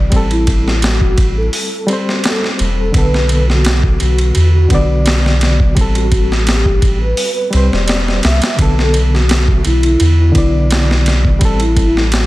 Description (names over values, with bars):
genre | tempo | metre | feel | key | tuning
trip hop | 85 BPM | 4/4 | straight | B phrygian | A4 = 441 Hz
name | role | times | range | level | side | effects
barky reed electric piano | accompaniment | 0.0-12.3 s | D3 to D5 | -19 LUFS | equal | overdrive, fast tremolo
soft dub sub bass | bass | 0.0-12.3 s | E1 to E2 | -13 LUFS | equal | none
boom bap sampler-style drum kit | drums | 0.1-12.3 s | hi-hat, kick drum, ride cymbal, snare drum | -15 LUFS | equal | none
pure breathy sine lead | melody | 0.3-12.3 s | E4 to E5 | -20 LUFS | equal | ensemble chorus, tape echo
room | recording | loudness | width
little or no reverb | dense, heavily limited modern master, vinyl crackle | -10 LUFS | side -18 dB against mid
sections
0.0-12.3 A section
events
none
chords
0.1 Am7; 2.9 Bm7; 5.8 Am7; 8.6 Bm7; 11.4 Am7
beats
| 0.12 0.82 1.53 2.24 | 2.94 3.65 4.36 5.06 | 5.77 6.47 7.18 7.88 | 8.59 9.30 10.00 10.71 | 11.41 12.12